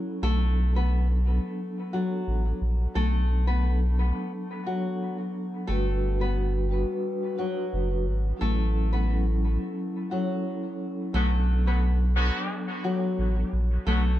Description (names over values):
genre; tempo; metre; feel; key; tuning
hip hop; 88 BPM; 4/4; swing 55% on 16ths; B minor; A4 = 439 Hz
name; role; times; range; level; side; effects
vibraphone with soft mallets; accompaniment; 0.0-14.2 s; F#3 to B4; -31 LUFS; equal; cassette tape, high-pass filter, low-pass filter, dub echo
nylon-string guitar; melody; 0.2-14.2 s; F#3 to B4; -33 LUFS; left 2 dB; high-pass filter, low-pass filter, dub echo
saturated sub bass; bass; 0.2-14.2 s; F#1 to B1; -24 LUFS; equal; none
clear horn section; stabs; 11.1-14.0 s; D3 to F#4; -33 LUFS; left 1 dB; high-pass filter, low-pass filter, dub echo
room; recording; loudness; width
light reverb; echo-heavy mix; -24 LUFS; side -14 dB against mid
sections
0.0-11.1 A section; 11.1-14.2 B section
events
break 9.8-11.1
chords
0.2 Bm7; 5.7 Gmaj7; 8.4 F#m7/A; 11.1 Bm7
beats
| 0.23 0.91 1.59 2.27 | 2.95 3.63 4.32 5.00 | 5.68 6.36 7.04 7.73 | 8.41 9.09 9.77 10.45 | 11.13 11.82 12.50 13.18 | 13.86